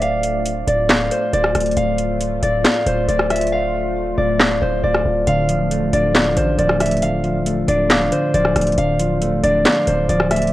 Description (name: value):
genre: hip hop, trap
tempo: 137 BPM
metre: 4/4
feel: half-time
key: D minor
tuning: A4 = 441 Hz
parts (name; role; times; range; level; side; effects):
- concert harp; melody; 0.0-10.5 s; C5 to F5; -19 LUFS; equal; none
- deep dark ambient pad; sustained chords; 0.0-10.5 s; A3 to F5; -26 LUFS; left 3 dB; chorus, built-in reverb
- distorted 808-style bass; bass; 0.0-10.5 s; D1 to A1; -23 LUFS; equal; distortion
- trap drum kit; drums; 0.0-10.5 s; handclaps, hi-hat, rim click, snare drum; -19 LUFS; equal; overdrive
- semi-hollow electric guitar; accompaniment; 5.3-10.5 s; D3 to D5; -21 LUFS; equal; none
room: light reverb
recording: worn, warbling old tape, cassette tape, warbly pitch drift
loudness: -15 LUFS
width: side -15 dB against mid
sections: 0.0-10.5 A section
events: hi-hats muted 3.5-5.3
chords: 0.0 Dm